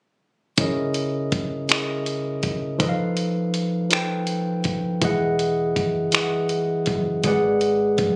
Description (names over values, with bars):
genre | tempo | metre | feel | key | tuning
slow six-eight R&B | 54 BPM (dotted quarters) | 6/8 | straight | unclear | A4 = 440 Hz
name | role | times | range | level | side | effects
barky tine electric piano | accompaniment | 0.6-8.2 s | C#3 to G5 | -24 LUFS | equal | overdrive
dusty soul sampler-style drum kit | drums | 0.6-8.2 s | finger snaps, hi-hat, kick drum | -24 LUFS | equal | none
woody fretless electric bass | bass | 5.0-8.2 s | E1 to G#1 | -33 LUFS | equal | subtle chorus
room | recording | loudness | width
moderate plate reverb, RT60 2.4 s | recorded on a phone in the room, studio reverb, compression | -23 LUFS | mono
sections
0.6-8.2 A section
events
none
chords
0.6 C#m69; 2.8 F7#11; 5.0 Emaj7; 7.2 G#m7b5